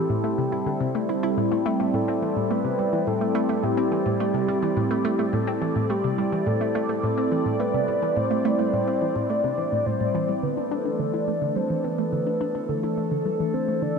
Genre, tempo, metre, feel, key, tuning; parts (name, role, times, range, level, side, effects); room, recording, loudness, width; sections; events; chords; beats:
ambient, sequencer-driven space music; 106 BPM; 4/4; straight; A minor; A4 = 440 Hz
soft octave-layered synth lead; melody; 0.0-14.0 s; G4 to D5; -28 LUFS; left 1 dB; chorus, cassette tape, ping-pong delay
phased analog pad; sustained chords; 0.0-14.0 s; E3 to D5; -25 LUFS; equal; phaser, chorus
hollow square pluck; riff; 0.0-14.0 s; A2 to E4; -27 LUFS; right 1 dB; chorus, phaser, ping-pong delay
wet huge ambient reverb, RT60 8.8 s; cassette tape; -22 LUFS; side -5 dB against mid
0.0-14.0 A section
0.0 Am7; 10.4 Dsus2
0.24 0.81 | 1.37 1.94 2.50 3.07 | 3.64 4.20 4.77 5.33 | 5.90 6.47 7.03 7.60 | 8.16 8.73 9.30 9.86 | 10.43 10.99 11.56 12.13 | 12.69 13.26 13.82